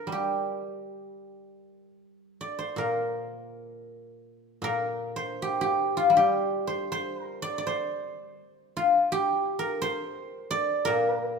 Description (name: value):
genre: chinese traditional, Chinese solo plucked strings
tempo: 76-87 BPM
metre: 2/4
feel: rubato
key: G yu mode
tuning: A4 = 442 Hz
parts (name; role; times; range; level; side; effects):
- guzheng; solo; 0.0-11.4 s; Bb2 to D5; -26 LUFS; left 1 dB; none
room: moderate recital hall reverb, RT60 1.6 s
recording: minimal, uncompressed stereo recording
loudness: -25 LUFS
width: side -5 dB against mid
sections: 0.0-7.7 A section; 7.7-11.4 B section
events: none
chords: none